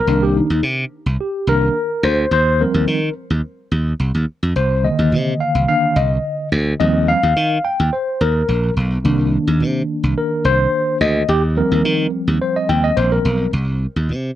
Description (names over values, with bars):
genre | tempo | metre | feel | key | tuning
early-eighties boogie funk | 107 BPM | 4/4 | straight | C minor | A4 = 441 Hz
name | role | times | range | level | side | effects
tine electric piano | accompaniment | 0.0-13.5 s | D3 to G5 | -17 LUFS | left 1 dB | medium stereo tremolo, plate reverb
glassy slap bass | bass | 0.1-14.3 s | Bb1 to Eb3 | -17 LUFS | right 1 dB | none
room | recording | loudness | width
light reverb | rough home demo mix | -15 LUFS | side -13 dB against mid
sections
0.0-13.5 A section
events
tine electric piano solo 0.0-13.5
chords
0.1 Cm9; 2.3 Eb69; 4.6 Cm9; 6.8 Eb69; 9.0 Cm9; 11.3 Eb69; 13.5 Cm